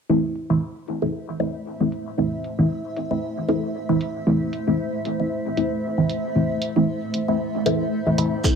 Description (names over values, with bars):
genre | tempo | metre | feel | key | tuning
dub techno | 115 BPM | 4/4 | swing 56% on 16ths | A minor | A4 = 435 Hz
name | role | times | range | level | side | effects
granular cloud pad | sustained chords | 1.1-8.6 s | A3 to A5 | -27 LUFS | equal | built-in reverb, sidechain pumping
filtered dub chord stab | stabs | 0.1-8.6 s | E3 to E4 | -22 LUFS | equal | phaser, sidechain pumping, dub echo
electronic hi-hat | drums | 0.4-8.3 s | none | -33 LUFS | right 3 dB | low-pass filter on hats, low-pass filter on room
electronic kick drum | drums | 8.4-8.6 s | none | -18 LUFS | equal | none
shekere | percussion | 8.4-8.6 s | none | -25 LUFS | right 4 dB | none
room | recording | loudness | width
wet spring reverb, RT60 1.2 s, digital ambience | none | -21 LUFS | side -6 dB against mid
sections
0.1-8.6 A section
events
filter sweep on drum 0.1-8.6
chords
0.1 Am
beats
| 0.10 0.62 1.14 1.66 | 2.18 2.70 3.23 3.75 | 4.27 4.79 5.31 5.83 | 6.36 6.88 7.40 7.92 | 8.44